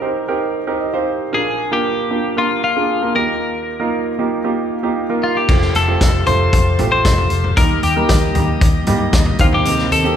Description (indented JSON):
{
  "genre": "piano-driven pop",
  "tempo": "115 BPM",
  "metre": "4/4",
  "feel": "straight",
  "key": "unclear",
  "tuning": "A4 = 442 Hz",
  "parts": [
    { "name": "twelve-string electric guitar", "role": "melody", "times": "0.0-10.2 s", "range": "F4 to C5", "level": "-19 LUFS", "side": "left 4 dB", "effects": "none" },
    { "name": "clear grand piano", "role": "accompaniment", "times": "0.0-10.2 s", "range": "Bb1 to Bb5", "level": "-19 LUFS", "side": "right 3 dB", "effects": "none" },
    { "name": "bright tonewheel organ", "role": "sustained chords", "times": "5.5-10.2 s", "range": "G4 to Eb6", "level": "-30 LUFS", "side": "left 2 dB", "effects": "overdrive, slow rotary speaker" },
    { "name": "vintage muted fingered electric bass", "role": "bass", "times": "5.5-10.1 s", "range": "F1 to G2", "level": "-19 LUFS", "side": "left 1 dB", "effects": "none" },
    { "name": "loose indie drum kit", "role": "drums", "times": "5.5-10.0 s", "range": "crash cymbal, hi-hat, kick drum, snare drum, toms", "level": "-16 LUFS", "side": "left 1 dB", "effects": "none" },
    { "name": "picked steel-string acoustic guitar", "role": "riff", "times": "9.7-10.2 s", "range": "C3 to Bb4", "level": "-20 LUFS", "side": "right 3 dB", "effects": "none" },
    { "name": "tambourine", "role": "percussion", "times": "9.7-10.2 s", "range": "none", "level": "-34 LUFS", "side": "left 6 dB", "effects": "none" }
  ],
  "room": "wet recital hall reverb, RT60 1.6 s",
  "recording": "recorded in a church or concert hall",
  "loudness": "-14 LUFS",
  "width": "side -9 dB against mid",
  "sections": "0.0-5.5 A section; 5.5-10.2 B section",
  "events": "grand piano fill 0.0-1.3",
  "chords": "0.0 Cm7; 1.3 Bb; 3.1 Ebadd9; 5.5 Fadd9; 7.6 Eb; 9.4 Cm7/Eb"
}